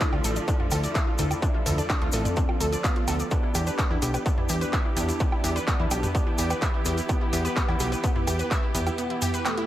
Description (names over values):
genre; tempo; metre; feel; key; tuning
melodic techno; 127 BPM; 4/4; straight; unclear; A4 = 440 Hz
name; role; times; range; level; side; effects
mellow synth brass; melody; 0.0-9.7 s; A3 to E4; -34 LUFS; equal; chorus, phaser, sidechain pumping, analog delay
bright studio string section; sustained chords; 0.0-9.7 s; D3 to G4; -35 LUFS; right 2 dB; sidechain pumping
wide unison pluck; arpeggios; 0.0-9.6 s; B3 to F5; -31 LUFS; equal; sidechain pumping, diffuse ambient delay
electronic kick drum; drums; 0.0-8.6 s; none; -26 LUFS; equal; distortion, overdrive
techno drum kit; drums; 0.0-9.7 s; handclaps, hi-hat, toms, woodblock; -31 LUFS; right 1 dB; overdrive, sidechain pumping on hats, sidechain pumping on perc, sidechain pumping on toms
tube shaker; percussion; 0.0-9.6 s; none; -36 LUFS; left 3 dB; none
plucky analog bass; bass; 0.1-8.9 s; A1 to E2; -27 LUFS; equal; sidechain pumping
room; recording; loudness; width
moderate plate reverb, RT60 2.2 s; dreamy mix soaked in reverb; -23 LUFS; side -13 dB against mid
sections
0.0-9.7 A section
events
kick drops out 9.0-9.7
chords
0.0 Dm; 3.3 Em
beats
0.01 0.48 0.95 | 1.42 1.90 2.37 2.84 | 3.31 3.79 4.26 4.73 | 5.20 5.67 6.15 6.62 | 7.09 7.57 8.04 8.51 | 8.98 9.45